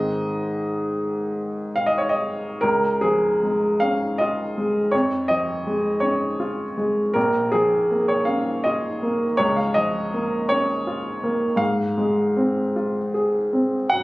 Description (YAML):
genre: classical, romantic nocturne for solo piano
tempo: 40-56 BPM (dotted quarters)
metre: 12/8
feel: rubato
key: Db major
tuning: A4 = 441 Hz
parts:
  - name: warm upright piano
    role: solo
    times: 0.0-14.0 s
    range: Bb1 to Gb5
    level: -20 LUFS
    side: equal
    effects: none
room: light reverb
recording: recorded on a phone in the room, club reverb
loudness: -20 LUFS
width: side -20 dB against mid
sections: 0.0-2.6 A section; 2.6-14.0 B section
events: none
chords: 0.0 Ab; 2.6 Db; 4.9 Db/F; 7.2 Bbm; 9.4 Bbm/Db; 11.6 Fm/Ab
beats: 1.25 | 2.63 3.81 4.93 6.02 | 7.16 8.27 9.39 10.51 | 11.59 12.74 13.90